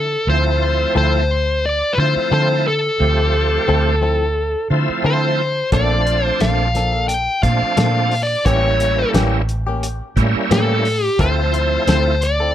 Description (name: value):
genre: straight-eighth soul blues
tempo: 88 BPM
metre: 4/4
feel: swing 54% on 16ths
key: D minor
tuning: A4 = 440 Hz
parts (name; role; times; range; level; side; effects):
- smooth overdriven lead guitar; melody; 0.0-12.5 s; A4 to G5; -18 LUFS; left 2 dB; none
- vintage muted fingered electric bass; bass; 0.0-12.5 s; A1 to D3; -19 LUFS; equal; none
- bright tonewheel organ; accompaniment; 0.3-12.2 s; F3 to G4; -22 LUFS; right 4 dB; slow rotary speaker, overdrive, chorus vibrato
- direct-recorded clean electric guitar; stabs; 0.9-12.5 s; E3 to A4; -25 LUFS; left 4 dB; spring reverb
- cloth-damped thuddy drum kit; drums; 5.7-12.4 s; hi-hat, kick drum, snare drum; -20 LUFS; equal; none
room: light reverb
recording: none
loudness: -15 LUFS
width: side -11 dB against mid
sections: 0.0-12.5 A section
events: none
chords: 0.0 Dm9; 5.7 Bbmaj7; 8.5 A7b9; 11.2 Dm9